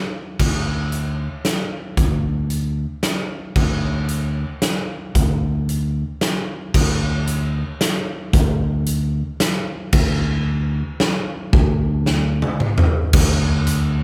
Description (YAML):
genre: post-rock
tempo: 113 BPM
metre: 3/4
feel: straight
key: unclear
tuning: A4 = 441 Hz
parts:
  - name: fingered electric bass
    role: bass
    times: 0.4-14.0 s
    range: D2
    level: -23 LUFS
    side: equal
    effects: none
  - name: huge arena drum kit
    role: drums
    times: 0.4-13.8 s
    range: crash cymbal, hi-hat, kick drum, snare drum, toms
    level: -22 LUFS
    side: equal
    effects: none
room: light reverb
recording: none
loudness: -20 LUFS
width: mono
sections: 0.4-13.1 A section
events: build-up 0.4-13.1; drum fill 12.1-13.1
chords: none